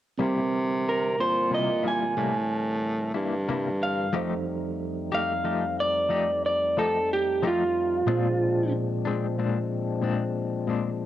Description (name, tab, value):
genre	blues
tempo	61 BPM (dotted quarters)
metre	12/8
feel	straight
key	F mixolydian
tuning	A4 = 440 Hz
part	mellow tine electric piano	accompaniment	0.2-11.1 s	Bb2 to D6	-33 LUFS	right 4 dB	medium stereo tremolo
part	semi-hollow electric guitar	accompaniment	0.2-10.9 s	Bb2 to G4	-29 LUFS	left 5 dB	tremolo
part	tonewheel organ	sustained chords	0.2-11.1 s	F2 to Bb4	-33 LUFS	left 5 dB	slow rotary speaker, overdrive, chorus vibrato
part	mellow baritone saxophone	bass	0.2-4.1 s	G2 to C3	-27 LUFS	equal	none
part	electric guitar through a small old amp	melody	0.9-8.7 s	F4 to Ab5	-25 LUFS	right 1 dB	vibrato effect, cassette tape
room	light reverb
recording	home recording on cassette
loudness	-24 LUFS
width	side -12 dB against mid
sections	0.2-4.1 A section; 4.1-11.1 B section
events	none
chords	0.2 C7; 4.1 F9; 8.1 Bb9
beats	| 0.19 1.18 2.16 3.15 | 4.13 5.12 6.11 7.09 | 8.07 9.06 10.04 11.03